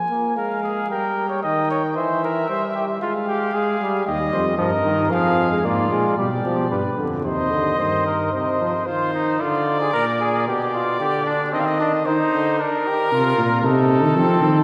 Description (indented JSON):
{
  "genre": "classical, imitative canzona for brass ensemble",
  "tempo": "113 BPM",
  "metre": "4/4",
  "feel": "straight",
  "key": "C minor from 8.3 s",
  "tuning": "A4 = 440 Hz",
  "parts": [
    { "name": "warm cornet", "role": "melody", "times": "0.0-14.6 s", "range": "A4 to Ab5", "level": "-26 LUFS", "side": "equal", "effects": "none" },
    { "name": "clear trombone", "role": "accompaniment", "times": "0.1-12.6 s", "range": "Bb2 to Bb3", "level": "-27 LUFS", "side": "equal", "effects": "none" },
    { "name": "mellow trumpet", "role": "second line", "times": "0.4-14.6 s", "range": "C4 to Eb5", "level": "-26 LUFS", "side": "equal", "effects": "none" },
    { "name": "mellow tuba", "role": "bass", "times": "4.1-8.3, 13.1-14.6 s", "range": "Eb2 to F3", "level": "-25 LUFS", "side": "equal", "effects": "none" }
  ],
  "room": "wet church reverb, RT60 3.6 s",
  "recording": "recorded in a church or concert hall, vinyl crackle",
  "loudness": "-21 LUFS",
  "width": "mono",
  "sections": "0.0-8.3 A section; 8.3-14.6 B section",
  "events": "none",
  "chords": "0.0 Fm; 0.9 Gdim; 2.0 C/E; 3.0 Fm/Ab; 4.1 Cm/Eb (rootless); 5.1 Ddim/F; 6.2 G/B; 7.2 Cm/Eb; 8.3 Cm; 9.4 Ddim; 10.5 G/B; 11.5 Cm/Eb; 12.6 Gm/D; 13.6 Adim/C"
}